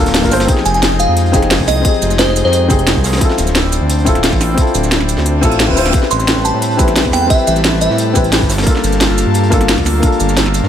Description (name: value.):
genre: liquid drum and bass.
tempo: 176 BPM.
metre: 4/4.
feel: straight.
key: A phrygian.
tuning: A4 = 440 Hz.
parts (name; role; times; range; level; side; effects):
felt-muted upright piano; accompaniment; 0.0-10.7 s; Bb3 to C5; -17 LUFS; left 3 dB; ping-pong delay.
airy breathy pad; sustained chords; 0.0-10.7 s; F3 to G5; -21 LUFS; equal; chorus, sidechain pumping.
smooth synth bass; bass; 0.0-10.7 s; D1 to A2; -16 LUFS; equal; tube saturation.
crunchy breakbeat drum kit; drums; 0.1-10.7 s; hi-hat, snare drum; -26 LUFS; equal; high-pass filter on hats, high-pass filter on snare, high-pass filter on room.
drum and bass drum kit; drums; 0.1-10.6 s; hi-hat, shaker, snare drum; -17 LUFS; equal; none.
electronic kick drum; drums; 0.2-10.1 s; none; -15 LUFS; equal; none.
glassy synth bell; melody; 0.7-2.8, 6.1-8.1 s; C5 to C6; -17 LUFS; right 1 dB; chorus, digital delay.
reverse cymbal; sound effects; 5.4-5.9 s; none; -24 LUFS; right 6 dB; none.
room: light reverb, studio ambience.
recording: none.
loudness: -10 LUFS.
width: side -9 dB against mid.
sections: 0.0-10.7 A section.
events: reverse cymbal 5.4-5.9.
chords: 0.5 Fm9; 3.2 Dm9; 5.9 Am9; 8.5 Gm9.